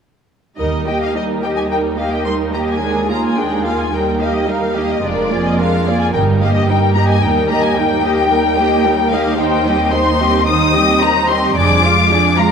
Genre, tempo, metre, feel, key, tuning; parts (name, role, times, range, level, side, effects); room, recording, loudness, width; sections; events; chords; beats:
quick classical-period movement for string orchestra; 110 BPM; 4/4; rubato; Eb major, C minor from 9.4 s; A4 = 439 Hz
warm symphonic violin section; melody; 0.6-12.5 s; D5 to Eb6; -18 LUFS; left 5 dB
dark symphonic violin section; second line; 0.6-12.5 s; Eb4 to F5; -19 LUFS; left 1 dB
rich symphonic viola section; accompaniment; 0.6-12.5 s; Eb3 to G4; -19 LUFS; right 3 dB
rich symphonic cello section; bass; 0.6-12.5 s; Eb2 to G2; -19 LUFS; right 3 dB
warm symphonic double bass section; bass; 0.6-1.1, 5.0-7.7, 11.6-12.1 s; F1 to Eb2; -23 LUFS; right 3 dB
wet concert hall reverb, RT60 1.7 s; minimal, uncompressed stereo recording; -13 LUFS; side -6 dB against mid
0.6-12.5 A section
0.6 Eb; 2.8 Bb7/Eb; 3.9 Eb; 5.0 Bb7/F; 6.1 Eb/G; 7.2 Eb; 9.4 Cm/Eb; 11.6 Ddim/F
| 0.59 1.15 1.70 2.25 | 2.81 3.37 3.92 4.48 | 5.03 5.59 6.14 6.68 | 7.22 7.76 8.31 8.86 | 9.40 9.94 10.48 11.02 | 11.57 12.11